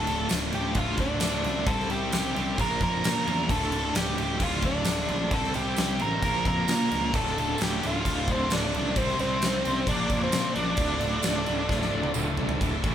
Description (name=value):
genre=classic rock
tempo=132 BPM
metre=4/4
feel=straight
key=D minor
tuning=A4 = 440 Hz
part: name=octave-fuzz lead guitar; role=melody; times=0.0-12.1 s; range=C4 to Bb4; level=-29 LUFS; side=right 1 dB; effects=distortion
part: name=crunchy overdriven guitar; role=riff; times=0.0-12.9 s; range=D2 to C4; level=-34 LUFS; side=right 1 dB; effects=tremolo
part: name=distorted electric guitar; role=riff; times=0.0-12.9 s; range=D2 to C4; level=-36 LUFS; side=right 8 dB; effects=overdrive
part: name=tight distorted guitar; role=riff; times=0.0-12.9 s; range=D2 to C5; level=-34 LUFS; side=left 8 dB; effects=distortion
part: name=fuzz picked electric bass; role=bass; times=0.0-12.9 s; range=D1 to Bb2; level=-32 LUFS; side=equal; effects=overdrive
part: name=huge arena drum kit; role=drums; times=0.1-12.9 s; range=crash cymbal, kick drum, snare drum, toms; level=-29 LUFS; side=equal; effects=none
part: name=tambourine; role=percussion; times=0.3-12.3 s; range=none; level=-39 LUFS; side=right 8 dB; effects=none
part: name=overdriven tonewheel organ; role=sustained chords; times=5.3-12.9 s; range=E3 to C5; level=-41 LUFS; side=equal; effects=none
room=light reverb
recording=band playing live in one room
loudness=-24 LUFS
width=side -10 dB against mid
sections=0.0-12.6 A section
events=drum fill 11.7-12.6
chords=0.0 Dm; 1.7 C; 2.6 Bb; 3.5 Dm; 5.3 C; 6.2 Bb; 7.1 Dm; 9.0 C; 9.9 Bb; 10.8 Dm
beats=0.30 0.76 1.21 | 1.67 2.13 2.58 3.04 | 3.49 3.95 4.41 4.86 | 5.32 5.77 6.23 6.68 | 7.14 7.60 8.05 8.51 | 8.96 9.42 9.88 10.33 | 10.79 11.24 11.70 12.16 | 12.61